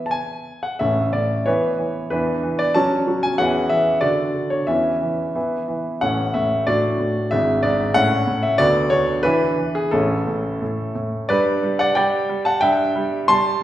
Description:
classical-period piano sonatina; 87-95 BPM; 2/4; rubato; A major; A4 = 441 Hz
clear grand piano; solo; 0.0-13.6 s; G#1 to C6; -18 LUFS; equal
wet recital hall reverb, RT60 1.4 s; recorded in a church or concert hall; -17 LUFS; side -13 dB against mid
0.8-11.3 A section; 11.3-13.6 B section
0.0 E5; 0.8 A; 1.5 E5; 2.8 F#m; 3.4 C#m/E; 4.0 D; 4.7 C#m/E; 5.4 E5; 6.0 A; 6.7 D/A; 7.3 E7/G#; 8.0 A; 8.6 Bm/D; 9.2 E5; 9.9 A; 11.3 G; 12.6 Am7/G
0.12 | 0.81 1.47 | 2.12 2.76 | 3.40 4.03 | 4.69 5.36 | 6.02 6.68 | 7.32 7.95 | 8.59 9.25 | 9.93 10.61 | 11.30 11.96 | 12.62 13.28

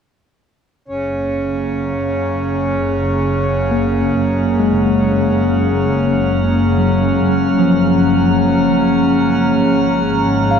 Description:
ambient; free time; F# major; A4 = 439 Hz
warbly tape-like pad; sustained chords; 1.2-10.6 s; G#3 to A#5; -17 LUFS; equal; chorus, built-in reverb
dark chamber double bass section; bass; 0.9-10.6 s; F#1 to G#1; -21 LUFS; equal
pedal harmonium; drone; 0.9-10.6 s; C#3 to C#4; -21 LUFS; equal
drifting glass-harmonics texture; texture; 1.7-10.6 s; F#5 to E#6; -27 LUFS; equal; chorus, built-in reverb
tine electric piano; arpeggios; 3.7-10.6 s; E#3 to E#5; -17 LUFS; left 1 dB; medium stereo tremolo, diffuse ambient delay
wet cathedral reverb, RT60 5.0 s; dark, warm production; -13 LUFS; side -7 dB against mid
0.9-10.6 A section
fade-in on synth texture 0.9-10.6
0.9 F#maj7; 9.6 G#7(no3)
free time

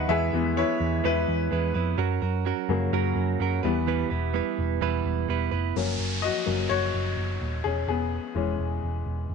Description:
piano-driven pop; 127 BPM; 4/4; straight; A4 = 440 Hz
clear upright piano; accompaniment; 0.0-9.3 s; C#3 to G#5; -28 LUFS; left 10 dB
direct-recorded clean electric guitar; riff; 0.0-5.8 s; E3 to B4; -28 LUFS; right 17 dB
hollow-body short-scale picked electric bass; bass; 0.0-9.3 s; D#1 to F#2; -28 LUFS; right 1 dB
downlifter; sound effects; 5.8-9.3 s; -35 LUFS; right 2 dB
light reverb; 1960s-style stereo with parts hard left and right, nothing above 10.7 kHz; -24 LUFS; side -5 dB against mid
0.0-5.8 A section; 5.8-9.3 B section
upright piano solo 0.0-5.8, 5.8-9.3
0.1 E; 2.0 F#; 3.6 Em; 5.8 F#; 7.6 C#m/E
| 0.09 0.57 1.04 1.51 | 1.98 2.45 2.93 3.40 | 3.87 4.34 4.81 5.29 | 5.76 6.23 6.70 7.17 | 7.65 8.12 8.59 9.06

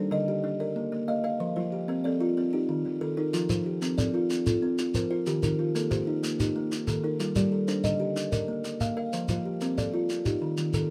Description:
southern african traditional, mbira-style interlocking cycle; 124 BPM (dotted quarters); 12/8; straight; F mixolydian; A4 = 438 Hz
buzzing kalimba; arpeggios; 0.0-10.9 s; D3 to F5; -34 LUFS; equal
kalimba; arpeggios; 0.0-10.9 s; Eb3 to F5; -30 LUFS; equal
shekere; percussion; 3.3-10.9 s; -34 LUFS; equal
light reverb; -28 LUFS; mono
0.0-10.9 A section
0.4 Bb; 1.4 F; 2.4 Eb; 3.3 F; 5.3 Eb; 7.2 Gm; 8.2 Bb; 9.1 F; 10.1 Eb
0.44 0.92 | 1.41 1.89 2.37 2.85 | 3.34 3.82 4.30 4.78 | 5.27 5.75 6.23 6.71 | 7.20 7.68 8.16 8.65 | 9.13 9.61 10.10 10.58

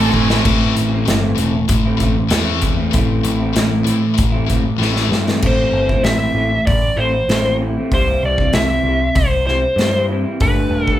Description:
quiet-loud alternative rock; 96 BPM; 4/4; straight; A minor; A4 = 440 Hz
smooth overdriven lead guitar; melody; 0.0-0.1, 5.5-11.0 s; B4 to A5; -18 LUFS; equal
heavy high-gain guitar; riff; 0.0-5.4 s; A2 to E4; -22 LUFS; left 6 dB; distortion
growling picked electric bass; bass; 0.0-10.9 s; E1 to A2; -20 LUFS; equal; overdrive
big rock drum kit; drums; 0.1-11.0 s; crash cymbal, hi-hat, kick drum, snare drum; -19 LUFS; equal
electric guitar through a small old amp; arpeggios; 0.4-11.0 s; A2 to B4; -20 LUFS; equal
moderate large studio reverb, RT60 0.7 s; band playing live in one room; -14 LUFS; side -12 dB against mid
0.4-5.4 A section; 5.4-11.0 B section
drum fill 0.1-0.4, 4.8-5.4
0.4 Am; 7.9 C; 10.4 Gadd9
| 0.43 1.06 1.68 2.30 | 2.93 3.55 4.17 4.80 | 5.42 6.04 6.67 7.29 | 7.91 8.54 9.16 9.78 | 10.40

